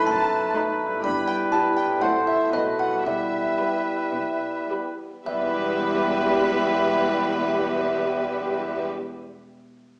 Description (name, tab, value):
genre	cinematic, playful, whimsical film cue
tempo	105-126 BPM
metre	4/4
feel	straight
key	E minor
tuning	A4 = 440 Hz
part	music box	melody	0.0-8.9 s	D#5 to B5	-28 LUFS	equal	none
part	clear oboe	second line	0.0-8.9 s	B4 to C5	-28 LUFS	equal	none
part	rich studio violin section	second line	0.0-8.9 s	D#5 to B5	-36 LUFS	equal	none
part	small flute group	second line	0.0-8.9 s	D#5 to B5	-28 LUFS	equal	none
part	warm clarinet	second line	0.0-8.9 s	D#4 to F#4	-32 LUFS	equal	none
part	clear bassoon	accompaniment	0.0-8.9 s	G3 to A3	-28 LUFS	equal	none
part	concert harp	arpeggios	0.0-9.2 s	F#2 to B4	-34 LUFS	equal	none
part	bright studio cello section	bass	0.1-8.9 s	E2 to B2	-34 LUFS	equal	none
part	clear symphonic double bass section	bass	0.1-8.9 s	E1 to B1	-38 LUFS	equal	none
part	rich studio violin section	melody	0.5-8.9 s	B4 to C5	-34 LUFS	equal	none
part	warm French horn section	sustained chords	0.5-8.9 s	A3 to A4	-33 LUFS	equal	none
part	warm studio viola section	accompaniment	0.6-8.9 s	F#3 to G4	-30 LUFS	equal	none
room	wet recital hall reverb, RT60 1.3 s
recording	recorded in a church or concert hall, small speaker sound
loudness	-21 LUFS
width	side -38 dB against mid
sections	0.0-5.3 A section; 5.3-9.8 B section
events	slowing down 0.1-5.3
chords	0.0 B7/F#; 1.0 Em/G; 2.0 F#m7b5/A; 2.5 B7; 3.1 Em